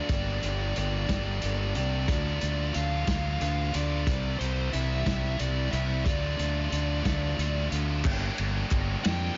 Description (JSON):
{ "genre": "indie rock", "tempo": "60 BPM (dotted quarters)", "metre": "6/8", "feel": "straight", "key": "unclear", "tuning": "A4 = 437 Hz", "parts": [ { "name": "fuzz lead guitar", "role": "melody", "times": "0.0-9.3 s", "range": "C5 to G5", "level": "-37 LUFS", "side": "equal", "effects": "distortion, plate reverb, analog delay" }, { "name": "biting overdriven guitar", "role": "riff", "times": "0.0-9.4 s", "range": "C3 to G4", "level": "-36 LUFS", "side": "equal", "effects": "none" }, { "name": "fuzz fingered electric bass", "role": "bass", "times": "0.1-9.3 s", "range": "G1 to F2", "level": "-32 LUFS", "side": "equal", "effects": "overdrive" }, { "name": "vintage drum kit", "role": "drums", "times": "0.1-9.2 s", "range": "crash cymbal, hi-hat, kick drum, ride cymbal, snare drum", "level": "-33 LUFS", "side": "equal", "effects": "none" }, { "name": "group handclap", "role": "percussion", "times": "8.0-8.9 s", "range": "none", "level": "-41 LUFS", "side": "equal", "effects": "none" } ], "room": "light reverb", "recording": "nothing above 7.5 kHz", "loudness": "-28 LUFS", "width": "mono", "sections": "0.1-8.0 A section; 8.0-9.4 B section", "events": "none", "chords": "0.1 Gm; 2.1 Dm; 4.1 C; 6.1 Dm; 8.0 Gm" }